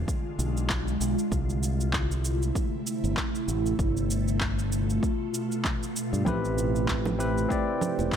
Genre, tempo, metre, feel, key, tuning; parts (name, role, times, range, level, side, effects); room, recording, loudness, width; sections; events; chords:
sunset chillout; 97 BPM; 4/4; swing 57% on 16ths; A minor; A4 = 440 Hz
ethereal airy pad; sustained chords; 0.0-8.2 s; B2 to G4; -30 LUFS; right 1 dB; ensemble chorus, built-in reverb, phaser
modern bright fingered electric bass; bass; 0.0-8.1 s; E1 to G2; -28 LUFS; equal; tube saturation
electronic kick drum; drums; 0.1-8.2 s; -31 LUFS; equal; overdrive
electronic shaker, handclaps and congas; drums; 0.1-8.2 s; -33 LUFS; right 2 dB; overdrive
barky tine electric piano; accompaniment; 6.2-8.2 s; C4 to D5; -28 LUFS; moving between left 4 dB and right 5 dB; auto-pan, vintage 12-bit sampler grit, ping-pong delay
bongos; percussion; 7.1-8.1 s; -39 LUFS; equal
light reverb, digital ambience; -25 LUFS; side -8 dB against mid
0.0-8.2 A section
0.0 E7b9 (rootless); 1.3 C6; 3.8 G9; 6.3 Am7